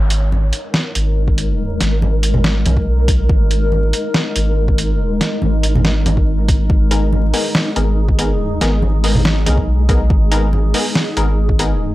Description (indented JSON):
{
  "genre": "deep dubstep",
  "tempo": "141 BPM",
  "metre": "4/4",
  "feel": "half-time",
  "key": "G# minor",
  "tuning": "A4 = 440 Hz",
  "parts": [
    { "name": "granular cloud pad", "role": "sustained chords", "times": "0.0-11.9 s", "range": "G#3 to A#4", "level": "-22 LUFS", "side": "left 2 dB", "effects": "built-in reverb" },
    { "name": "saturated sub bass", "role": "bass", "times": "0.0-11.9 s", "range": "G#1 to B1", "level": "-16 LUFS", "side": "equal", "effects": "transformer saturation" },
    { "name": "trip hop sampler-style drum kit", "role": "drums", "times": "0.1-11.7 s", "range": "hi-hat, snare drum", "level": "-19 LUFS", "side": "equal", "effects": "none" },
    { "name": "congas", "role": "percussion", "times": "0.3-10.6 s", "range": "none", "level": "-22 LUFS", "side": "right 1 dB", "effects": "none" },
    { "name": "electronic kick drum", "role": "drums", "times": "1.3-11.6 s", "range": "none", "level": "-15 LUFS", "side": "equal", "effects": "overdrive" },
    { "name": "filtered dub chord stab", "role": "stabs", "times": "6.9-11.7 s", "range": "B3 to A#4", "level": "-22 LUFS", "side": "left 2 dB", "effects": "chorus, dub echo" }
  ],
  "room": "digital ambience",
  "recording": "dry, gritty hardware recording, vinyl crackle",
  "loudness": "-13 LUFS",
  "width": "side -17 dB against mid",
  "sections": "0.0-11.9 A section",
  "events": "none",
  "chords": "0.0 G#madd9"
}